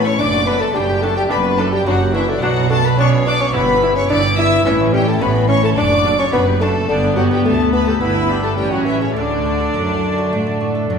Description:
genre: classical, baroque-style concerto movement with solo episodes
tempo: 107 BPM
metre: 4/4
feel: straight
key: D major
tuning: A4 = 440 Hz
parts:
  - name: mellow bassoon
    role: melody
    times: 0.0-11.0 s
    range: C#3 to E4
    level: -19 LUFS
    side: left 1 dB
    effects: none
  - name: warm chamber violin section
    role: melody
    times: 0.0-11.0 s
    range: C#5 to E6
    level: -22 LUFS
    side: left 3 dB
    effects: none
  - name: rich chamber violin section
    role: second line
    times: 0.0-11.0 s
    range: C#4 to E5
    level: -24 LUFS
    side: left 2 dB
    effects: none
  - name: lute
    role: accompaniment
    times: 0.0-11.0 s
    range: D2 to D5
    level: -27 LUFS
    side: left 1 dB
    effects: none
  - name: rich chamber cello section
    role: bass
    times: 0.0-11.0 s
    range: D2 to A3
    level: -22 LUFS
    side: right 2 dB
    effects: none
  - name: rich chamber double bass section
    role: bass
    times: 0.0-11.0 s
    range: F#1 to A2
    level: -21 LUFS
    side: right 2 dB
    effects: none
  - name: warm chamber viola section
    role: accompaniment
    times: 0.2-11.0 s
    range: B3 to E4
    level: -23 LUFS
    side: equal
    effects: none
room: wet recital hall reverb, RT60 1.7 s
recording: heard from further back in the room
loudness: -14 LUFS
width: side -6 dB against mid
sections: 0.0-11.0 A section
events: none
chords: 0.2 D/F#; 2.4 Bm; 3.5 Em/G; 4.7 A; 5.8 D/F#; 6.9 G; 8.6 A; 9.2 D

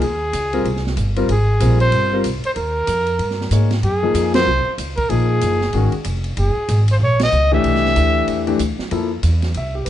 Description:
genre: modal jazz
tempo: 189 BPM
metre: 4/4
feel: swing 61% on 8ths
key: unclear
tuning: A4 = 440 Hz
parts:
  - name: warm trumpet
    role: melody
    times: 0.0-8.6 s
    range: Ab4 to Fb5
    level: -20 LUFS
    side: right 1 dB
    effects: none
  - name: upright bass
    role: bass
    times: 0.0-9.9 s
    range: F1 to Ab2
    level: -18 LUFS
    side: equal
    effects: none
  - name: open jazz drum kit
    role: drums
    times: 0.0-9.9 s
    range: hi-hat, kick drum, ride cymbal, snare drum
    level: -28 LUFS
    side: right 2 dB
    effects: none
  - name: warm concert grand piano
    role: accompaniment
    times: 0.5-9.9 s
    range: Eb3 to E5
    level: -21 LUFS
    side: left 4 dB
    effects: none
room: light reverb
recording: dark, warm production, nothing above 10.4 kHz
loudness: -15 LUFS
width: side -12 dB against mid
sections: 0.0-8.9 A section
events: band accent 4.3, 7.2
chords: 0.0 Abmaj9; 3.8 Gbmaj9; 7.6 Cadd9; 8.9 Fmaj7

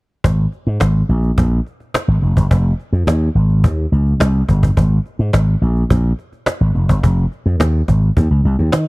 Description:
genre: early-eighties boogie funk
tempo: 106 BPM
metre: 4/4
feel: straight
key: unclear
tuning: A4 = 443 Hz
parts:
  - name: slap bass with an envelope filter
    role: bass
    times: 0.2-8.8 s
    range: F1 to Eb3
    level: -13 LUFS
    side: equal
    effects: none
  - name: cajon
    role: drums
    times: 0.2-8.9 s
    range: none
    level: -17 LUFS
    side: equal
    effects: none
room: studio ambience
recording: dry, close 1970s-style studio recording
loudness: -13 LUFS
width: side -24 dB against mid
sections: 0.2-8.9 A section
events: none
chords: none

